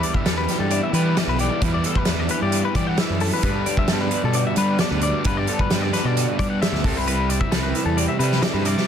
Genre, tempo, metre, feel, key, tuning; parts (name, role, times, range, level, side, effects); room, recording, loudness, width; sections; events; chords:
math rock and midwest emo; 132 BPM; 4/4; straight; G major; A4 = 440 Hz
twelve-string electric guitar; accompaniment; 0.0-8.9 s; G2 to D5; -29 LUFS; right 7 dB; analog chorus
twelve-string electric guitar; arpeggios; 0.0-8.9 s; A4 to F#5; -26 LUFS; left 8 dB; plate reverb, analog delay
overdriven electric guitar; riff; 0.0-8.9 s; G2 to E4; -26 LUFS; right 1 dB
loose indie drum kit; drums; 0.0-8.8 s; hi-hat, kick drum, snare drum; -24 LUFS; equal
fuzz fingered electric bass; bass; 0.3-8.7 s; B1 to G3; -24 LUFS; equal; overdrive
light reverb; dense, heavily limited modern master; -18 LUFS; side -8 dB against mid
0.0-8.9 A section
0.0 Em7; 3.4 Gmaj7; 6.8 Cmaj7